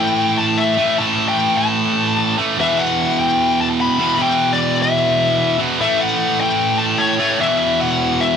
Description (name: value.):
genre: metal.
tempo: 150 BPM.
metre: 4/4.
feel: straight.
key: E minor.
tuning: A4 = 441 Hz.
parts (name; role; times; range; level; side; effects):
smooth overdriven lead guitar; melody; 0.0-8.4 s; C#5 to B5; -18 LUFS; left 5 dB; cassette tape, analog delay.
high-gain distorted guitar; riff; 0.0-8.4 s; E2 to A3; -17 LUFS; right 3 dB; distortion, cassette tape.
room: light reverb.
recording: home recording on cassette.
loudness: -14 LUFS.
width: side -7 dB against mid.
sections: 0.0-8.4 A section.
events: none.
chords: 0.0 A5; 2.6 Em; 5.8 A; 7.4 E5.